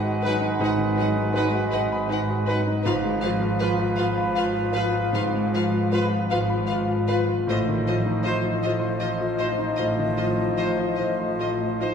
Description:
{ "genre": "classical", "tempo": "48-55 BPM (dotted quarters)", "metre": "12/8", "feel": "rubato", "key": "unclear", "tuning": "A4 = 444 Hz", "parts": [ { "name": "warm baby grand piano", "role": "melody", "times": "0.0-11.9 s", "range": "Ab2 to C6", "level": "-26 LUFS", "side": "left 2 dB", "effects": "none" }, { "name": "clear oboe", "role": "second line", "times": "0.0-11.9 s", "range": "Cb5 to C5", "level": "-35 LUFS", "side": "right 3 dB", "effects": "none" }, { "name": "mellow clarinet", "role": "second line", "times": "0.0-11.9 s", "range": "Eb4 to F4", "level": "-34 LUFS", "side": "right 1 dB", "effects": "none" }, { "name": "mellow hollow concert flute", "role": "second line", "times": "0.0-11.9 s", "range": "Eb5 to Gb5", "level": "-32 LUFS", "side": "left 3 dB", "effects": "none" }, { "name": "clear bassoon", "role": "accompaniment", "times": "0.0-11.9 s", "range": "F3 to Ab3", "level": "-32 LUFS", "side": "equal", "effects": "none" }, { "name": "clear chamber double bass section", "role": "bass", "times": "0.0-11.9 s", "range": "Ab1 to A1", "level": "-30 LUFS", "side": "right 2 dB", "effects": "none" }, { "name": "rich studio cello section", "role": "bass", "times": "0.0-11.9 s", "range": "Ab2 to A2", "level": "-30 LUFS", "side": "right 1 dB", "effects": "none" }, { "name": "rich chamber violin section", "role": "second line", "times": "0.2-11.9 s", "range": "Cb5 to C5", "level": "-36 LUFS", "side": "left 4 dB", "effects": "none" }, { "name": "mellow French horn section", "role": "sustained chords", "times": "0.2-11.9 s", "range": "F3 to F4", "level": "-34 LUFS", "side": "left 3 dB", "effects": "none" }, { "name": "bright trumpet", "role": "stabs", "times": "0.2-11.9 s", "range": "Cb5 to C5", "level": "-34 LUFS", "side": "right 2 dB", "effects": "none" }, { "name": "rich chamber violin section", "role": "melody", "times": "0.3-11.9 s", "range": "Eb5 to Gb5", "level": "-36 LUFS", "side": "left 3 dB", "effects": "none" }, { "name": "rich chamber viola section", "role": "accompaniment", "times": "0.3-11.9 s", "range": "Eb4 to F4", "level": "-34 LUFS", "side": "right 2 dB", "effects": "none" } ], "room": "wet scoring stage reverb, RT60 1.9 s", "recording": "heard from further back in the room", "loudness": "-21 LUFS", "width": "side -7 dB against mid", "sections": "0.0-11.9 A section", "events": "none", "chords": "0.0 Abm7; 2.9 Fdim/Ab; 7.5 F7/A", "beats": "0.60 1.72 | 2.86 3.99 5.15 6.32 | 7.49 8.64 9.79 10.99" }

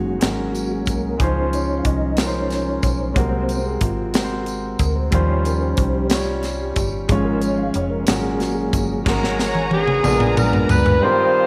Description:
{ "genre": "slow gospel", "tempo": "61 BPM (dotted quarters)", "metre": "6/8", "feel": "straight", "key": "unclear", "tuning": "A4 = 439 Hz", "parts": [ { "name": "clear concert grand piano", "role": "accompaniment", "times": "0.0-11.5 s", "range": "Ab2 to Db5", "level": "-27 LUFS", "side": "equal", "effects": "none" }, { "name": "mellow tonewheel organ", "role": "sustained chords", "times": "0.0-11.5 s", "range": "F3 to Eb6", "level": "-26 LUFS", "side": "equal", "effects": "chorus vibrato, stopped rotary speaker" }, { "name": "metallic FM bass", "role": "bass", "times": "0.0-11.0 s", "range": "F1 to Eb2", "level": "-27 LUFS", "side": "equal", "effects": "none" }, { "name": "crisp fusion drum kit", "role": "drums", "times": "0.2-11.0 s", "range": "crash cymbal, hi-hat, kick drum, snare drum, toms", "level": "-24 LUFS", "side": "equal", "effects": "none" }, { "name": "tambourine", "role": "percussion", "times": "0.2-11.0 s", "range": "none", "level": "-39 LUFS", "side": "equal", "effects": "none" }, { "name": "warm studio string section", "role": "sustained chords", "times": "9.1-11.0 s", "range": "Cb4 to Bb5", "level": "-28 LUFS", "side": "equal", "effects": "none" }, { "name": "clear saxophone section", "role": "melody", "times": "9.7-11.5 s", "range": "Cb4 to C5", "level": "-20 LUFS", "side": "equal", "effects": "none" } ], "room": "moderate echo chamber reverb, RT60 1.7 s", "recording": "none", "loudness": "-20 LUFS", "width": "mono", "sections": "0.0-9.1 A section; 9.1-11.0 B section", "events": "tonewheel organ solo 0.0-9.1; drum fill 9.1-11.0", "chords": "0.2 Ab9sus4; 1.2 Dbmaj7; 3.2 Ab9; 5.1 Eb13; 7.1 Db/Ab; 8.1 Ab9sus4; 10.0 Bb7b9", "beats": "0.22 | 1.20 2.18 | 3.17 4.15 | 5.13 6.11 | 7.10 8.08 | 9.06 10.05 | 11.03" }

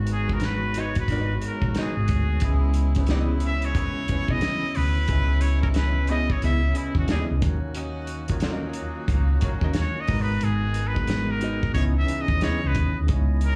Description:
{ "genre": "R&B, neo-soul", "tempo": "90 BPM", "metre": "4/4", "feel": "swing 62% on 16ths", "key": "C# dorian", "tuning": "A4 = 440 Hz", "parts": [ { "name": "overdriven tine electric piano", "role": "accompaniment", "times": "0.0-13.6 s", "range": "C#3 to D#5", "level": "-34 LUFS", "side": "equal", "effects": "fast tremolo, slapback echo" }, { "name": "warm woodwind section", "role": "sustained chords", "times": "0.0-13.6 s", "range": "C#3 to D#5", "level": "-38 LUFS", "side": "equal", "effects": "none" }, { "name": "hollow-body short-scale fingered electric bass", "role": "bass", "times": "0.0-13.6 s", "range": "G#1 to D#2", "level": "-26 LUFS", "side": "equal", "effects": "none" }, { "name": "trumpet with straight mute", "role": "melody", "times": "0.1-13.6 s", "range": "E4 to E5", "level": "-32 LUFS", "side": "equal", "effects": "none" }, { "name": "warm soul drum kit", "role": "drums", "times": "0.1-13.6 s", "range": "hi-hat, kick drum, snare drum", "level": "-30 LUFS", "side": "equal", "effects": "none" }, { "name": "hollow-body jazz guitar", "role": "second line", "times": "0.4-12.6 s", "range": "B3 to D#5", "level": "-33 LUFS", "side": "equal", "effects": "slapback echo" }, { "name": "warm horn section", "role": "stabs", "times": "2.4-13.6 s", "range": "E3 to G#4", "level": "-39 LUFS", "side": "equal", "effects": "slapback echo" } ], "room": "studio ambience", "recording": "live gig heard through the venue's PA, club reverb, vinyl crackle, small room ambience", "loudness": "-24 LUFS", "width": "mono", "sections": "0.0-13.1 A section", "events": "muted trumpet solo 0.0-13.1", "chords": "0.0 G#m7; 2.4 C#m9; 7.4 D#m7; 10.1 G#m7; 11.8 C#m9", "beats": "0.42 1.09 1.75 | 2.42 3.09 3.75 4.42 | 5.09 5.75 6.42 7.09 | 7.75 8.42 9.09 9.75 | 10.42 11.09 11.75 12.42 | 13.09" }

